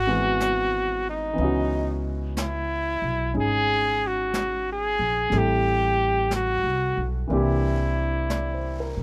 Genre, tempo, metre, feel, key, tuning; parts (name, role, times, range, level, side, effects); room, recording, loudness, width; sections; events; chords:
jazz ballad; 61 BPM; 4/4; swing 67% on 8ths; A4 = 440 Hz
clear trumpet; melody; 0.0-8.9 s; D#4 to G#4; -27 LUFS; equal
upright bass; bass; 0.0-9.0 s; G#1 to C3; -30 LUFS; equal
warm baby grand piano; accompaniment; 0.1-9.0 s; E3 to D#5; -32 LUFS; equal
jazz brush drum kit; drums; 0.4-9.0 s; brushed snare drum, hi-hat, snare drum; -39 LUFS; equal
little or no reverb; -24 LUFS; mono
0.0-9.0 A section
0.0 G#7alt; 1.4 C#m11; 5.3 Am7; 7.3 C9